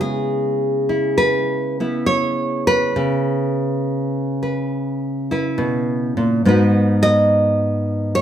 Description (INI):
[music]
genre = solo jazz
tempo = 69 BPM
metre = 4/4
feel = swing 68% on 8ths, rubato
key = unclear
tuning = A4 = 435 Hz
[part]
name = nylon-string guitar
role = solo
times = 0.0-8.2 s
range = G#2 to D#5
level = -16 LUFS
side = equal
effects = none
[sound]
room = wet large studio reverb, RT60 1.0 s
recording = band playing live in one room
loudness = -16 LUFS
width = side -10 dB against mid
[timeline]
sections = 0.0-8.2 A section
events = none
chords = 0.0 C#m7; 6.4 G#m7